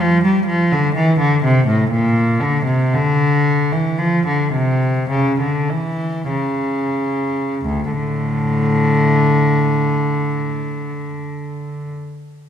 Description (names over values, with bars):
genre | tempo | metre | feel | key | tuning
classical, baroque-style suite movement for unaccompanied cello | 43-66 BPM | 4/4 | rubato | D minor | A4 = 436 Hz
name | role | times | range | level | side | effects
rich cello | solo | 0.0-11.9 s | D2 to G3 | -15 LUFS | equal | none
room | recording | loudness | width
wet scoring stage reverb, RT60 2.0 s | minimal, uncompressed stereo recording | -15 LUFS | side -9 dB against mid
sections
0.0-7.7 A section; 7.7-12.5 B section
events
slowing down 0.0-7.7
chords
none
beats
0.02 0.95 1.92 | 2.93 3.98 5.11 6.32 | 7.66 9.00 10.32 11.66